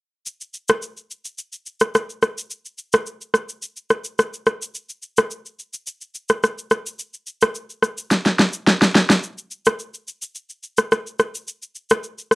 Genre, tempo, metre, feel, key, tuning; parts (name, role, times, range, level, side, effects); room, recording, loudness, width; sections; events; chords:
afrobeats; 107 BPM; 4/4; straight
electronic shaker, rim click and snare drum; drums; 0.3-12.3 s; -17 LUFS; equal; cassette tape
moderate studio reverb, RT60 0.5 s; home recording on cassette; -18 LUFS; side -24 dB against mid
0.3-9.2 A section; 9.2-12.3 B section
drum fill 8.1-9.2